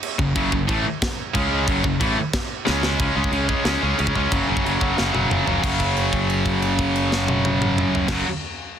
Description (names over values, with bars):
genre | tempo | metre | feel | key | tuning
heavy metal | 181 BPM | 4/4 | straight | F# minor | A4 = 441 Hz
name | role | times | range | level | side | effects
tight metal drum kit | drums | 0.0-8.2 s | china cymbal, crash cymbal, kick drum, snare drum, toms | -25 LUFS | equal | none
high-gain distorted guitar | riff | 0.2-8.3 s | F#2 to C#4 | -21 LUFS | equal | distortion
picked electric bass | bass | 0.2-8.2 s | F#1 to C#2 | -26 LUFS | equal | none
room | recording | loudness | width
studio reverb | dense, heavily limited modern master | -18 LUFS | side -8 dB against mid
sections
0.0-3.0 A section; 3.0-5.6 B section; 5.6-8.3 C section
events
drum fill 2.7-3.0, 5.0-5.6; held note 5.6-8.1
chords
0.0 F#m; 1.3 C#5; 1.7 F#m; 2.7 C#5; 4.3 F#5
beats
0.03 | 0.36 0.69 1.02 1.35 | 1.68 2.01 2.34 2.67 | 3.00 3.33 3.66 3.99 | 4.32 4.65 4.98 5.31 | 5.64 5.97 6.31 6.64 | 6.97 7.30 7.63 7.96